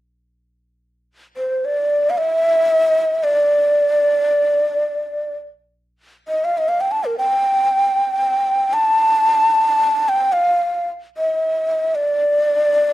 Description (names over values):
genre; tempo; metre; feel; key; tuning
arabic; free time; none; none; D maqam bayati; A4 = 440 Hz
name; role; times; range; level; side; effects
breathy low ney; melody; 1.4-12.9 s; Bb4 to A5; -15 LUFS; equal; slapback echo
room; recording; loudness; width
light reverb; dry, close 1970s-style studio recording; -15 LUFS; side -15 dB against mid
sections
0.6-12.9 A section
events
none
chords
none